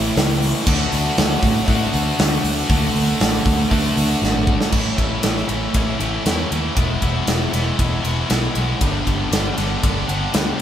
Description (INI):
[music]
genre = classic rock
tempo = 118 BPM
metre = 4/4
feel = straight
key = A mixolydian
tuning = A4 = 440 Hz
[part]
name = sludgy distorted guitar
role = riff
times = 0.0-10.6 s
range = G2 to F#4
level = -21 LUFS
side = equal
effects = overdrive
[part]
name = fingered electric bass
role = bass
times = 0.0-10.5 s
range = E1 to A2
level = -22 LUFS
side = equal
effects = none
[part]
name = big rock drum kit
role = drums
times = 0.2-10.5 s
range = crash cymbal, hi-hat, kick drum, ride cymbal, snare drum, toms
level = -20 LUFS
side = equal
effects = none
[sound]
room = moderate studio reverb, RT60 0.8 s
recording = band playing live in one room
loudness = -16 LUFS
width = side -10 dB against mid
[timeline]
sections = 0.0-4.7 A section; 4.7-10.6 B section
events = drum fill 4.2-4.7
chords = 0.0 A; 0.7 D; 4.7 A; 6.8 E; 8.8 G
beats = 0.16 | 0.67 1.17 1.68 2.19 | 2.69 3.20 3.71 4.22 | 4.73 5.24 5.75 6.26 | 6.77 7.28 7.79 8.30 | 8.81 9.32 9.83 10.35